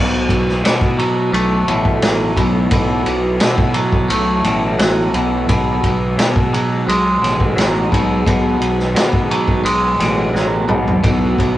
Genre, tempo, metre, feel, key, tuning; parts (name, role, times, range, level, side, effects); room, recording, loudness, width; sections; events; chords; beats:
psychedelic rock; 86 BPM; 4/4; straight; B mixolydian; A4 = 440 Hz
string machine, cellos; sustained chords; 0.0-11.6 s; D#4 to C#5; -27 LUFS; equal
twangy electric guitar; riff; 0.0-11.6 s; B2 to A3; -17 LUFS; equal; phaser
fuzz fingered electric bass; bass; 0.0-11.6 s; A1 to B2; -20 LUFS; equal; overdrive
vintage drum kit; drums; 0.3-11.6 s; kick drum, ride cymbal, snare drum, toms; -18 LUFS; equal
moderate small room reverb, RT60 0.5 s; rough rehearsal-room recording, nothing above 10.5 kHz; -13 LUFS; side -14 dB against mid
0.0-11.6 A section
drum fill 10.3-11.0
0.0 B7sus4; 5.5 G#m7; 11.0 B7sus4
0.64 1.33 2.03 | 2.72 3.41 4.10 4.79 | 5.49 6.18 6.87 7.57 | 8.26 8.96 9.65 10.35 | 11.04